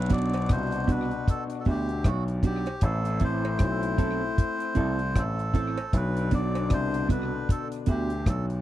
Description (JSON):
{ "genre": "roots reggae", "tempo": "77 BPM", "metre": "4/4", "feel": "swing 59% on 16ths", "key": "unclear", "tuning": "A4 = 440 Hz", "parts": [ { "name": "melodica", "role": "melody", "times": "0.0-8.5 s", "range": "F#4 to D5", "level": "-33 LUFS", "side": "right 1 dB", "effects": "tape echo" }, { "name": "bright trombone section", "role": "second line", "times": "0.0-8.6 s", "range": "B2 to F#4", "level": "-34 LUFS", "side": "left 8 dB", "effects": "tape echo" }, { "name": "dark grand piano", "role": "bass", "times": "0.0-8.6 s", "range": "A1 to D2", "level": "-29 LUFS", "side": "equal", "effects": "none" }, { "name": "mellow electric guitar", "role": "accompaniment", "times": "0.1-8.1 s", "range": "B3 to A4", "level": "-33 LUFS", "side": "right 6 dB", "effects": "tape echo" }, { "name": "deep reggae drum kit", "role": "drums", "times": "0.1-8.6 s", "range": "hi-hat, kick drum, rim click", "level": "-24 LUFS", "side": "equal", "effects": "none" }, { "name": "cowbell", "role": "percussion", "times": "0.3-6.7 s", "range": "none", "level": "-40 LUFS", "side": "right 7 dB", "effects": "none" } ], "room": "little or no reverb", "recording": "dry, close 1970s-style studio recording", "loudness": "-24 LUFS", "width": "side -13 dB against mid", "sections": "0.0-8.6 A section", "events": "none", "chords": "0.0 Bm; 2.8 Am; 5.9 Bm" }